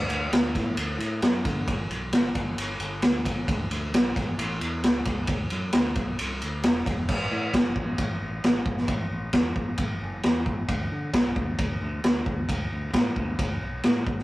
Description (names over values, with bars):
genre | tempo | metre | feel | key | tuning
classic rock | 133 BPM | 4/4 | straight | A major | A4 = 440 Hz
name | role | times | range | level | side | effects
growling fingered electric bass | bass | 0.0-14.2 s | E1 to D3 | -32 LUFS | equal | overdrive
vintage drum kit | drums | 0.1-14.2 s | crash cymbal, kick drum, ride cymbal, snare drum | -24 LUFS | equal | none
room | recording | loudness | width
little or no reverb | rough rehearsal-room recording | -24 LUFS | side -18 dB against mid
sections
0.0-7.1 A section; 7.1-14.2 B section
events
none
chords
none